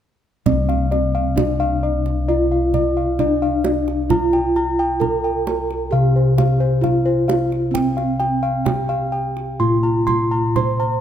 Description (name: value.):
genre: Javanese gamelan.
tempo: 66 BPM.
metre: 4/4.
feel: straight.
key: C slendro.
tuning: A4 = 440 Hz.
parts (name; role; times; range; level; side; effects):
gamelan-type bronze metallophone; melody; 0.5-11.0 s; C4 to C5; -21 LUFS; equal; none.
gamelan-type bossed gongs; arpeggios; 0.5-11.0 s; C5 to C6; -23 LUFS; left 2 dB; none.
gamelan-type bossed gongs; bass; 0.5-11.0 s; C2 to F4-20c; -20 LUFS; left 1 dB; none.
kendang; percussion; 0.5-10.8 s; none; -25 LUFS; right 7 dB; none.
room: light reverb.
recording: close, detailed microphones.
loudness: -16 LUFS.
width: side -10 dB against mid.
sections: 0.5-11.0 A section.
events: none.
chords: none.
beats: | 0.47 1.37 2.28 3.19 | 4.10 5.01 5.92 6.83 | 7.74 8.66 9.60 10.56.